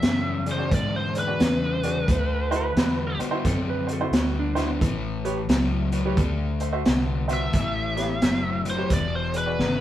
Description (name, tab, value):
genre	electric blues shuffle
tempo	88 BPM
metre	4/4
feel	swing 63% on 8ths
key	unclear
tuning	A4 = 440 Hz
part	biting lead guitar	melody	0.0-3.2, 7.3-9.8 s	B4 to E5	-28 LUFS	right 1 dB	overdrive
part	overdriven semi-hollow guitar	riff	0.0-9.8 s	E2 to C4	-28 LUFS	left 4 dB	none
part	vintage muted fingered electric bass	bass	0.0-9.8 s	E1 to G#2	-29 LUFS	equal	none
part	crunchy breakbeat drum kit	drums	0.0-9.8 s	hi-hat, kick drum, snare drum	-24 LUFS	equal	none
part	clear upright piano	accompaniment	0.5-9.6 s	E4 to E5	-31 LUFS	right 3 dB	none
part	clean lap steel guitar	second line	2.6-4.8 s	D4 to B4	-32 LUFS	right 4 dB	none
room	moderate stone room reverb, RT60 1.0 s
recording	band playing live in one room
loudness	-22 LUFS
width	side -12 dB against mid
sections	0.0-9.8 A section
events	drum fill 9.6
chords	0.0 E7; 2.1 D7; 4.8 A7; 6.2 D7; 7.5 A7; 8.9 E7